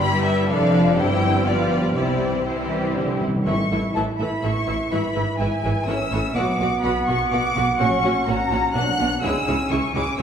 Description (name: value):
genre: quick classical-period movement for symphony orchestra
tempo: 125 BPM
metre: 3/4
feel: straight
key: C major, A major from 3.5 s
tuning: A4 = 436 Hz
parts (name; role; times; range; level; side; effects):
- rich studio violin section; melody; 0.0-10.2 s; C5 to F#6; -26 LUFS; left 3 dB; none
- clear symphonic violin section; second line; 0.0-10.2 s; F#4 to F#5; -29 LUFS; left 2 dB; none
- rich studio viola section; accompaniment; 0.0-10.2 s; D3 to F#4; -27 LUFS; right 2 dB; none
- mellow French horn section; sustained chords; 0.0-9.4 s; E3 to E4; -27 LUFS; left 2 dB; none
- clear studio cello section; bass; 0.0-10.2 s; F2 to E3; -27 LUFS; right 2 dB; none
- rich studio double bass section; bass; 0.0-10.2 s; F1 to C#2; -28 LUFS; right 2 dB; none
- timpani; percussion; 2.0-4.2 s; A2 to C3; -27 LUFS; equal; none
- mellow clarinet; second line; 3.5-10.2 s; B3 to E4; -29 LUFS; left 1 dB; none
- silver concert flute; second line; 3.5-10.2 s; E5 to G#5; -27 LUFS; right 2 dB; none
room: wet recital hall reverb, RT60 1.5 s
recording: recorded in a church or concert hall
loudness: -19 LUFS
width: side -8 dB against mid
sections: 0.0-3.5 A section; 3.5-10.2 B section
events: timpani fill 2.0-3.5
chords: 0.0 Em/G; 0.5 Dm/F; 1.0 C/G; 1.5 G7; 2.0 C; 3.5 A; 4.9 E/G#; 5.9 A; 6.4 Bm; 7.8 F#/A#; 8.7 Bm; 9.2 C#m